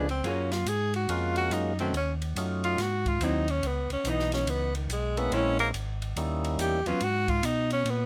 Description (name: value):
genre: soul jazz organ trio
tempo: 142 BPM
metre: 4/4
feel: swing 65% on 8ths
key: G# dorian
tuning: A4 = 440 Hz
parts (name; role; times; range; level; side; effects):
- breathy tenor saxophone; melody; 0.0-8.1 s; D#3 to G#4; -31 LUFS; equal; none
- percussive tonewheel organ; melody; 0.0-6.8 s; F#3 to F#4; -35 LUFS; equal; slow rotary speaker, overdrive
- archtop guitar, miked and amplified; accompaniment; 0.0-7.0 s; D#3 to G#4; -35 LUFS; equal; none
- mellow tonewheel organ; bass; 0.0-8.1 s; G#1 to B2; -33 LUFS; equal; chorus vibrato, slow rotary speaker
- open jazz drum kit; drums; 0.1-8.0 s; hi-hat, kick drum, ride cymbal, snare drum; -40 LUFS; equal; none
room: little or no reverb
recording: close, detailed microphones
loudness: -28 LUFS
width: mono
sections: 0.0-8.1 A section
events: tenor saxophone solo 0.0-8.1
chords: 0.2 F#maj9; 1.9 D#m7b5; 2.8 G#7b13; 3.6 C#m9; 5.3 A#m7b5; 6.2 D#7b9; 7.0 G#m9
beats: | 0.24 0.66 1.09 1.51 | 1.93 2.36 2.78 3.20 | 3.63 4.05 4.47 4.89 | 5.32 5.74 6.16 6.58 | 7.01 7.43 7.85